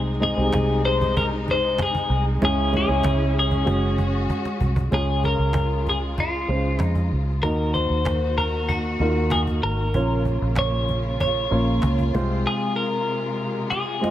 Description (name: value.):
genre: piano-driven pop.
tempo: 96 BPM.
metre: 4/4.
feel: straight.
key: unclear.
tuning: A4 = 436 Hz.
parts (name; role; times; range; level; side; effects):
dark grand piano; accompaniment; 0.0-14.1 s; Bb2 to Eb5; -26 LUFS; right 1 dB; none.
warm studio string section; sustained chords; 0.0-14.1 s; C3 to Gb4; -31 LUFS; left 2 dB; none.
vintage muted fingered electric bass; bass; 0.0-12.4 s; Gb1 to F2; -24 LUFS; right 1 dB; none.
twelve-string electric guitar; melody; 0.2-14.1 s; F4 to Db5; -25 LUFS; left 2 dB; spring reverb.
cajon; drums; 0.2-14.1 s; none; -28 LUFS; right 1 dB; none.
room: light reverb, small room ambience.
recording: none.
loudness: -20 LUFS.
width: side -12 dB against mid.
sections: 0.0-4.9 A section; 4.9-14.1 B section.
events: drum fill 4.3-4.9, 13.7-14.1; break 12.5-14.1.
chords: 0.0 Ab/C; 2.4 Dbm; 3.7 Gbsus2; 4.9 Db; 7.4 Ebm; 9.9 Bbm; 12.1 Fm/C.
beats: 0.54 1.16 1.79 | 2.42 3.04 3.67 4.30 | 4.92 5.55 6.18 6.81 | 7.44 8.06 8.69 9.32 | 9.95 10.58 11.21 11.83 | 12.46 13.09 13.71.